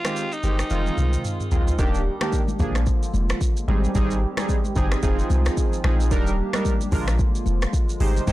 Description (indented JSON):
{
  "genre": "afrobeats",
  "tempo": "111 BPM",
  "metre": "4/4",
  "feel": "swing 58% on 16ths",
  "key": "Eb major",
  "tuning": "A4 = 439 Hz",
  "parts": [
    { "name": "raspy alto saxophone", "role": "melody", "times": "0.0-1.2 s", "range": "Eb4 to F4", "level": "-31 LUFS", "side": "equal", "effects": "digital delay, plate reverb" },
    { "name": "afro-pop drum kit", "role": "drums", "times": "0.0-8.3 s", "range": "finger snaps, hi-hat, kick drum, rim click, shaker, toms", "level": "-24 LUFS", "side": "equal", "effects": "soft clipping on snare" },
    { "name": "warm analog keys", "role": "accompaniment", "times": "0.1-8.3 s", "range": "Eb3 to C5", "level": "-27 LUFS", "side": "right 2 dB", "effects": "chorus, plate reverb" },
    { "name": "punchy sub bass", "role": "bass", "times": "0.4-8.3 s", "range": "Eb1 to C2", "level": "-22 LUFS", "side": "equal", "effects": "none" },
    { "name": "hollow soft pad", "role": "sustained chords", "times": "1.8-8.3 s", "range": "C3 to G4", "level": "-31 LUFS", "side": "right 1 dB", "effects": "chorus" },
    { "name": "congas", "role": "percussion", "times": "2.2-8.2 s", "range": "none", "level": "-34 LUFS", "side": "left 4 dB", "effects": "none" }
  ],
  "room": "light reverb",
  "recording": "blown-out, overdriven recording, overdrive",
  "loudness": "-20 LUFS",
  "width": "side -16 dB against mid",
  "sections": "0.0-1.8 A section; 1.8-8.3 B section",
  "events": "drum fill 0.7-1.8",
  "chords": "0.0 Abmaj7; 0.7 Fm7; 1.8 Ebmaj7; 2.6 Bb7; 3.7 Abmaj7; 5.0 Fm7; 6.1 Ebmaj7; 6.9 Bb7"
}